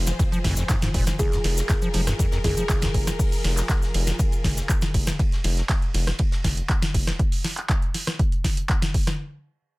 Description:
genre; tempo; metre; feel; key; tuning
acid house; 120 BPM; 4/4; straight; F minor; A4 = 440 Hz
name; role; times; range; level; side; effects
bright studio string section; sustained chords; 0.0-5.2 s; F3 to C5; -34 LUFS; left 2 dB; sidechain pumping
round analog bass; bass; 0.0-7.1 s; F1; -25 LUFS; equal; sidechain pumping
booming analog drum machine; drums; 0.1-9.2 s; handclaps, hi-hat, rim click, snare drum, toms; -28 LUFS; equal; none
cabasa; percussion; 0.1-5.2 s; none; -36 LUFS; left 3 dB; none
acid bass, square; riff; 0.2-2.9 s; F1 to F3; -28 LUFS; equal; sidechain pumping, tape echo
electronic kick drum; drums; 0.2-9.0 s; none; -22 LUFS; equal; overdrive
warm soul drum kit; drums; 0.2-7.2 s; hi-hat, ride cymbal, snare drum; -39 LUFS; right 1 dB; sidechain pumping on cymbals, high-pass filter on cymbals, sidechain pumping on hats, high-pass filter on hats, high-pass filter on snare, high-pass filter on room
kalimba; melody; 1.2-2.7 s; Ab4; -32 LUFS; equal; tape echo
room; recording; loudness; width
little or no reverb; dense, heavily limited modern master; -20 LUFS; side -22 dB against mid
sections
0.0-9.2 A section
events
drop 0.0-9.2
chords
0.0 Fm

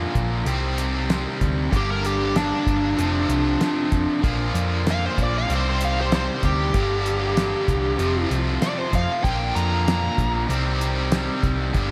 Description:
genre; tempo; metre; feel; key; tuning
classic rock; 96 BPM; 4/4; straight; unclear; A4 = 440 Hz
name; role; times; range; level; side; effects
cranked stack guitar; riff; 0.0-11.9 s; F2 to C4; -30 LUFS; equal; overdrive, harmonic tremolo
tight distorted guitar; riff; 0.0-11.9 s; F2 to G4; -30 LUFS; equal; distortion, slapback echo
hollow-body short-scale picked electric bass; bass; 0.0-11.9 s; F1 to F2; -27 LUFS; equal; none
cloth-damped thuddy drum kit; drums; 0.2-11.9 s; hi-hat, kick drum, snare drum; -27 LUFS; equal; none
smooth overdriven lead guitar; melody; 1.8-11.4 s; D4 to Bb5; -27 LUFS; equal; slapback echo
room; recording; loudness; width
moderate concert hall reverb, RT60 2.0 s, small room ambience; big arena sound; -22 LUFS; mono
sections
0.0-11.9 A section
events
lead electric guitar solo 0.0-11.9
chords
0.5 Cm; 1.7 Gm; 3.0 F; 4.2 Bb; 5.5 Cm; 6.7 Gm; 8.0 F; 9.2 Bb; 10.5 Cm

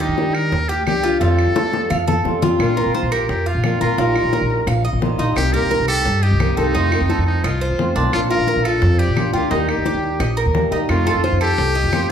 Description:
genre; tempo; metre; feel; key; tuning
latin, Cuban son and guajira; 174 BPM; 4/4; straight; Bb major; A4 = 440 Hz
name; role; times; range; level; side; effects
trumpet with metal mute; melody; 0.0-12.1 s; Eb4 to Bb4; -23 LUFS; equal; none
flamenco guitar; accompaniment; 0.0-12.1 s; C3 to G4; -23 LUFS; left 1 dB; none
Cuban tres; arpeggios; 0.0-12.1 s; D4 to F5; -22 LUFS; right 1 dB; none
upright bass; bass; 0.0-12.1 s; Bb1 to F3; -20 LUFS; equal; none
bongos; percussion; 0.0-12.1 s; none; -26 LUFS; left 2 dB; none
claves; percussion; 0.3-12.1 s; none; -33 LUFS; right 4 dB; none
room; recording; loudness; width
wet large studio reverb, RT60 1.2 s; heard from further back in the room; -15 LUFS; side -8 dB against mid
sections
0.0-2.6 A section; 2.6-12.1 B section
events
drum fill 1.6-2.6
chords
0.0 Ebmaj7; 1.2 Fadd9; 2.6 Bbadd9; 4.0 Ebadd9/Bb; 5.4 Cm7; 6.7 F7; 8.1 Bb; 9.5 Eb; 10.9 F7

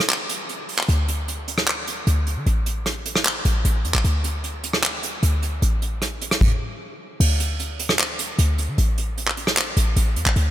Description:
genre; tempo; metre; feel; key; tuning
hip hop, trap; 152 BPM; 4/4; half-time; unclear; A4 = 440 Hz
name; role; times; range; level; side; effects
soft brush drum kit; drums; 0.0-10.5 s; crash cymbal, handclaps, hi-hat, kick drum, rim click; -22 LUFS; right 1 dB; none
short 808-style bass; bass; 0.9-10.5 s; A1 to D3; -20 LUFS; equal; none
room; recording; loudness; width
light reverb; none; -19 LUFS; side -12 dB against mid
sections
0.0-7.2 A section; 7.2-10.5 B section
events
break 0.0-0.9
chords
none

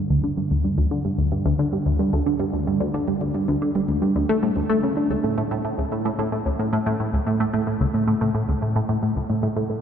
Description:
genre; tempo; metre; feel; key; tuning
ambient; 111 BPM; 4/4; straight; unclear; A4 = 440 Hz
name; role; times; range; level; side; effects
tight sequenced synth; solo; 0.0-9.8 s; C#2 to A3; -20 LUFS; equal; chorus, phaser, ping-pong delay
room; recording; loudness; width
wet cathedral reverb, RT60 6.5 s; in a vast, echoing space; -20 LUFS; side -8 dB against mid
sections
0.0-9.8 A section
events
none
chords
none

